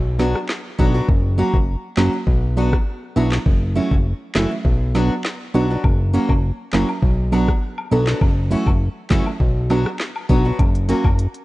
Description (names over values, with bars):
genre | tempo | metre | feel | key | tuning
dancehall | 101 BPM | 4/4 | straight | B minor | A4 = 441 Hz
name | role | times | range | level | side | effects
fat analog bass | bass | 0.0-11.3 s | F#1 to B1 | -19 LUFS | equal | none
downlifter | sound effects | 0.0-1.1 s | none | -50 LUFS | equal | none
deep mellow chord stab | accompaniment | 0.2-11.0 s | F#3 to A4 | -22 LUFS | right 2 dB | chorus, sidechain pumping
picked steel-string acoustic guitar | arpeggios | 0.2-11.1 s | E3 to F#4 | -27 LUFS | left 3 dB | none
island pop drum kit | drums | 0.2-11.4 s | handclaps, hi-hat, kick drum, rim click, snare drum | -19 LUFS | equal | none
woodblock and cabasa | percussion | 5.8-11.2 s | none | -33 LUFS | left 3 dB | none
room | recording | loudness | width
digital ambience | worn, warbling old tape, cassette tape, warbly pitch drift, nothing above 10.9 kHz | -16 LUFS | side -19 dB against mid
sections
0.0-11.4 A section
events
break 0.0-5.8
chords
0.0 Bm; 1.1 F#; 2.3 Bm; 3.5 F#m7; 4.7 Bm; 5.8 F#; 7.0 Bm; 8.2 F#m7; 9.4 Bm; 10.6 F#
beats
0.49 | 1.09 1.68 2.27 2.87 | 3.46 4.06 4.65 5.25 | 5.84 6.43 7.03 7.62 | 8.21 8.81 9.40 10.00 | 10.59 11.19